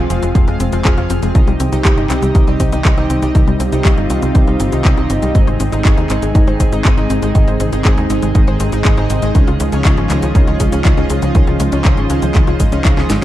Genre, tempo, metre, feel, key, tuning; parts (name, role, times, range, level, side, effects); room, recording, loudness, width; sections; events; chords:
italo disco; 120 BPM; 4/4; straight; A4 = 442 Hz
lush unison pad; sustained chords; 0.0-13.2 s; C3 to C5; -20 LUFS; equal; chorus
analog pluck; arpeggios; 0.0-13.2 s; Eb3 to C5; -23 LUFS; left 4 dB; chorus, tape echo
chorused polysynth; stabs; 0.0-13.2 s; Ab2 to F5; -21 LUFS; right 2 dB; tape echo
tight sequencer bass; bass; 0.0-13.2 s; F1 to Eb2; -17 LUFS; equal
house drum kit; drums; 0.1-13.2 s; cabasa, handclaps, hi-hat, snare drum; -23 LUFS; left 1 dB; overdrive
electronic kick drum; drums; 0.4-13.0 s; -12 LUFS; equal; overdrive
little or no reverb; dark, warm production; -11 LUFS; side -14 dB against mid
0.0-13.2 A section
drum fill 13.0
0.0 Fm; 1.4 Cm; 5.4 Ab; 9.4 Dbadd9